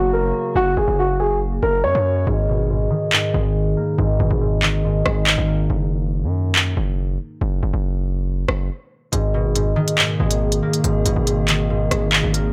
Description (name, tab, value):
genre	hip hop, drill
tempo	140 BPM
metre	4/4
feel	half-time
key	G# minor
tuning	A4 = 437 Hz
part	dark upright piano	melody	0.0-2.2 s	F#4 to C#5	-21 LUFS	equal	low-pass filter, tape echo
part	warbly tape-like pad	sustained chords	0.0-2.2, 9.7-12.5 s	B2 to G#4	-30 LUFS	equal	chorus, built-in reverb, low-pass filter
part	distorted 808-style bass	bass	0.0-12.5 s	F#1 to F#2	-23 LUFS	equal	distortion
part	concert harp	accompaniment	2.3-12.5 s	G#2 to A#3	-24 LUFS	equal	low-pass filter
part	drill drum kit	drums	3.1-12.4 s	handclaps, hi-hat, rim click	-21 LUFS	equal	none
room	light reverb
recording	blown-out, overdriven recording, overdrive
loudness	-20 LUFS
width	mono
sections	0.0-2.3 A section; 2.3-12.5 B section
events	filter sweep 0.0-2.3; hi-hats muted 2.3-9.1; filter sweep on harp 2.3-9.1; break 5.7-9.1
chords	0.0 F#; 2.3 G#madd9; 5.7 N.C.; 9.1 G#madd9